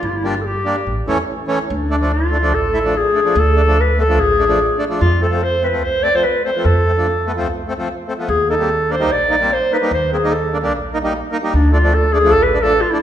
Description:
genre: klezmer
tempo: 146 BPM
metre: 4/4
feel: straight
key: unclear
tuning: A4 = 440 Hz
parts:
  - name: mellow clarinet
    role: melody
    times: 0.0-13.0 s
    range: D4 to D5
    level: -16 LUFS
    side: equal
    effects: none
  - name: upright bass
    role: bass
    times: 0.0-12.8 s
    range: G1 to F2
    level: -19 LUFS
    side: equal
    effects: none
  - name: accordion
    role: accompaniment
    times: 0.2-13.0 s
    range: E3 to E4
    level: -21 LUFS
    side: equal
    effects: none
room: wet recital hall reverb, RT60 1.8 s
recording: minimal, uncompressed stereo recording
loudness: -14 LUFS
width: side -10 dB against mid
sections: 0.0-1.7 A section; 1.7-13.0 B section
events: speeding up 0.0-13.0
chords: 0.0 Gm; 0.9 A; 1.7 Dm; 5.0 F; 8.3 Eb; 11.5 Dm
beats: | 0.03 0.45 0.87 1.28 | 1.70 2.12 2.53 2.94 | 3.36 3.77 4.19 4.60 | 5.01 5.42 5.83 6.24 | 6.66 7.07 7.47 7.88 | 8.29 8.70 9.11 9.51 | 9.92 10.32 10.72 11.13 | 11.53 11.93 12.33 12.73

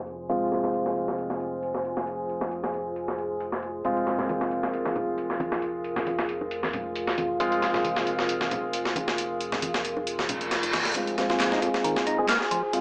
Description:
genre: breakbeat, breaks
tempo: 135 BPM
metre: 4/4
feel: swing 54% on 16ths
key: F minor pentatonic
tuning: A4 = 440 Hz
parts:
  - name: warbly tape-like pad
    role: sustained chords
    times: 0.0-12.8 s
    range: F4 to Ab5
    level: -33 LUFS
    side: equal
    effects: chorus, built-in reverb, sidechain pumping
  - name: clear concert grand piano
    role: stabs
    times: 0.0-12.8 s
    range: Ab3 to Ab4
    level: -32 LUFS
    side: equal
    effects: vintage 12-bit sampler grit, low-pass filter, tape echo
  - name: fat analog bass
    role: bass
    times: 0.0-12.8 s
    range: F1 to F2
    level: -44 LUFS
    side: equal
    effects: tube saturation, high-pass filter
  - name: downlifter, reverse cymbal and riser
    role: sound effects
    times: 0.0-0.3, 10.3-12.8 s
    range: none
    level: -35 LUFS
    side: equal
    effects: none
  - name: breakbeat sampler-style drum kit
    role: drums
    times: 0.1-12.8 s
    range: hi-hat, kick drum, snare drum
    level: -33 LUFS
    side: equal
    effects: high-pass filter on snare, high-pass filter on hats, high-pass filter on kick, high-pass filter on room
  - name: congas and bongos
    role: percussion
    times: 4.2-10.8 s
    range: none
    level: -39 LUFS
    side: equal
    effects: none
  - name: percussive tonewheel organ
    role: riff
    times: 11.3-12.6 s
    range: Eb3 to Eb4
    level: -31 LUFS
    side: equal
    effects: overdrive, slow rotary speaker, tube saturation, vintage 12-bit sampler grit, low-pass filter, tape echo
  - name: electronic handclaps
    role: drums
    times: 11.4-12.4 s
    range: none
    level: -37 LUFS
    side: equal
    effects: none
room: moderate digital room reverb, RT60 1.2 s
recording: low-pass filter, small speaker sound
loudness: -28 LUFS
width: mono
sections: 0.0-11.0 A section; 11.0-12.8 B section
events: filter sweep on grand piano 0.0-11.0, 11.0-12.8; filter sweep on ambient pad 0.0-11.0; filter sweep 0.0-11.0; reverse cymbal 10.3-11.0; build-up 11.0-12.8; filter sweep on tonewheel organ 11.0-12.8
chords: 0.0 Fm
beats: | 0.29 0.74 1.18 1.62 | 2.07 2.51 2.96 3.40 | 3.85 4.29 4.74 5.18 | 5.62 6.07 6.51 6.96 | 7.40 7.85 8.29 8.74 | 9.18 9.62 10.07 10.51 | 10.96 11.40 11.85 12.29 | 12.74

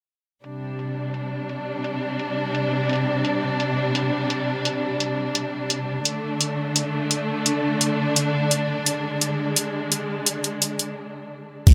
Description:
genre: half-time drum and bass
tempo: 171 BPM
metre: 4/4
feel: swing 59% on 16ths, half-time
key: unclear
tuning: A4 = 440 Hz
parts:
  - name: dark symphonic string section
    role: sustained chords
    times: 0.4-11.6 s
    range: C3 to D4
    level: -26 LUFS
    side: equal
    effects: sidechain pumping
  - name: drum and bass drum kit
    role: drums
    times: 0.4-11.7 s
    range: crash cymbal, hi-hat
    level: -24 LUFS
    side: equal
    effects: overdrive, low-pass filter on hats, low-pass filter on cymbals, low-pass filter on room
  - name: long sustained 808-style bass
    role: bass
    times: 11.7 s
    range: C2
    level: -11 LUFS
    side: equal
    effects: none
  - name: electronic kick drum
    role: drums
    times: 11.7 s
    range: none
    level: -19 LUFS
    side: equal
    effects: overdrive
room: moderate digital room reverb, RT60 1.2 s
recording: none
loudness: -24 LUFS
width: mono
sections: 0.4-11.7 A section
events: break 11.0-11.7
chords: 0.4 C5; 6.1 D5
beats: | 0.44 0.79 1.14 1.49 | 1.84 2.19 2.55 2.90 | 3.25 3.60 3.95 4.30 | 4.65 5.00 5.35 5.70 | 6.05 6.41 6.76 7.11 | 7.46 7.81 8.16 8.51 | 8.86 9.21 9.56 9.91 | 10.27 10.62 10.97 11.32 | 11.67

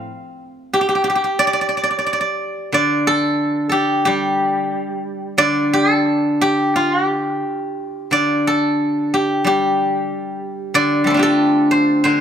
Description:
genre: chinese traditional, Chinese solo plucked strings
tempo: 91 BPM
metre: 2/4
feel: rubato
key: D yu mode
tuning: A4 = 440 Hz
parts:
  - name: steel-string zither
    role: solo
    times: 0.0-12.2 s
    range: D3 to F5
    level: -15 LUFS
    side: equal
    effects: none
room: light reverb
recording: close, detailed microphones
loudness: -15 LUFS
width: side -8 dB against mid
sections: 0.0-2.7 A section; 2.7-12.2 B section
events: none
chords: none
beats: | 0.09 0.74 | 1.39 2.06 | 2.75 3.43 | 4.08 4.74 | 5.38 6.04 | 6.72 7.42 | 8.11 8.79 | 9.45 10.10 | 10.76 11.41 | 12.06

